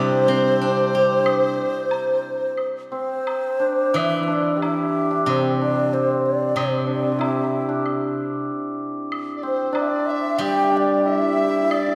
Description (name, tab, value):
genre	chinese traditional, Chinese chamber ensemble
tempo	92 BPM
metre	4/4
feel	rubato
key	C gong mode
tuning	A4 = 440 Hz
part	breathy low xiao	melody	0.0-11.9 s	C5 to G5	-25 LUFS	equal	none
part	hammered dulcimer	second line	0.0-11.9 s	C4 to G4	-26 LUFS	equal	none
part	hollow large dizi	second line	0.0-3.3, 9.4-11.9 s	C5 to G5	-28 LUFS	equal	none
part	steel-string zither	accompaniment	0.0-11.9 s	C3 to G4	-28 LUFS	equal	none
part	woodblock	percussion	1.3-11.9 s	none	-36 LUFS	equal	none
room	wet concert hall reverb, RT60 2.0 s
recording	heard from further back in the room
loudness	-21 LUFS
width	mono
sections	0.0-4.0 A section; 4.0-11.9 B section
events	none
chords	none